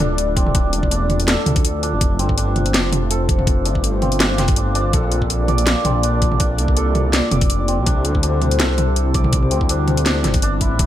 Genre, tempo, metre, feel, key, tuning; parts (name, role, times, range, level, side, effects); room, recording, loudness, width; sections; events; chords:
half-time drum and bass; 164 BPM; 4/4; swing 54% on 16ths, half-time; A4 = 440 Hz
dark analog pad; sustained chords; 0.0-10.9 s; G3 to D5; -24 LUFS; left 2 dB; chorus, sidechain pumping
santur; arpeggios; 0.0-10.9 s; C4 to D5; -25 LUFS; right 2 dB; ping-pong delay
dark detuned saw bass; bass; 0.0-10.9 s; D1 to D2; -20 LUFS; equal
drum and bass drum kit; drums; 0.0-10.9 s; hi-hat, snare drum, toms; -20 LUFS; equal
electronic kick drum; drums; 0.4-10.9 s; -19 LUFS; equal
light reverb, digital ambience; -15 LUFS; side -12 dB against mid
0.0-10.9 A section
0.0 Dm; 2.0 F; 4.9 Bb; 7.9 C